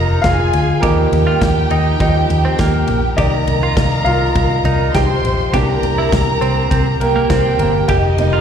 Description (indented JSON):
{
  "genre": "piano-driven pop",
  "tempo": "102 BPM",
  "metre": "4/4",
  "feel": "straight",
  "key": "unclear",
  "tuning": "A4 = 440 Hz",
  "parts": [
    { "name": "warm studio violin section", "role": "second line", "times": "0.0-8.4 s", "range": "Eb4 to C6", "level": "-20 LUFS", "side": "equal", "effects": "plate reverb, slapback echo" },
    { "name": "warm baby grand piano", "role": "accompaniment", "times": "0.0-8.4 s", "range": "Eb3 to G5", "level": "-18 LUFS", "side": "right 1 dB", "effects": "plate reverb, slapback echo" },
    { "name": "twelve-string electric guitar", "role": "riff", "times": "0.0-8.4 s", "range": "Bb3 to G4", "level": "-23 LUFS", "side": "right 5 dB", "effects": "wide subtle chorus, slapback echo" },
    { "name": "vintage muted fingered electric bass", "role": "bass", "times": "0.0-8.4 s", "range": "F1 to Eb2", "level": "-17 LUFS", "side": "equal", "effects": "none" },
    { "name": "modern studio drum kit", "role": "drums", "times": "0.2-8.3 s", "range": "kick drum, ride cymbal, snare drum, toms", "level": "-21 LUFS", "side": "left 1 dB", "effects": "none" }
  ],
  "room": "light reverb",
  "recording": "live gig heard through the venue's PA, recital hall reverb",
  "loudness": "-12 LUFS",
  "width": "side -8 dB against mid",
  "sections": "0.0-8.4 A section",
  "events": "grand piano solo 0.0-8.4",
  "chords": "0.0 F7sus4; 0.8 Ebadd9; 3.2 Cm7; 5.5 C7; 7.9 F7sus4",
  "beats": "0.24 | 0.83 1.42 2.00 2.59 | 3.18 3.77 4.36 4.94 | 5.53 6.12 6.71 7.30 | 7.89"
}